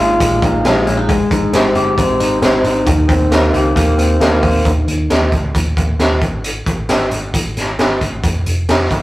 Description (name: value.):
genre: jangly indie pop.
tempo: 134 BPM.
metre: 4/4.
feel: straight.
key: Eb major.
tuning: A4 = 436 Hz.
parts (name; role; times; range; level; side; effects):
electric guitar through a small old amp; arpeggios; 0.0-5.2 s; Bb2 to G4; -14 LUFS; left 1 dB; spring reverb.
vintage muted picked electric bass; bass; 0.0-9.0 s; F1 to Eb2; -19 LUFS; equal; none.
raw garage drum kit; drums; 0.2-9.0 s; hi-hat, kick drum, snare drum; -15 LUFS; equal; none.
room: moderate studio reverb, RT60 0.6 s.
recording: rough rehearsal-room recording, tube saturation.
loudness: -12 LUFS.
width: side -17 dB against mid.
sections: 0.0-4.7 A section; 4.7-9.0 B section.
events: none.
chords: 0.0 Bb7sus4; 1.1 Abmaj7; 2.9 Eb6; 4.7 N.C.; 8.2 Fsus2.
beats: 0.20 0.65 | 1.09 1.54 1.98 2.42 | 2.87 3.31 3.76 4.21 | 4.65 5.10 5.54 5.99 | 6.44 6.89 7.34 7.79 | 8.24 8.69.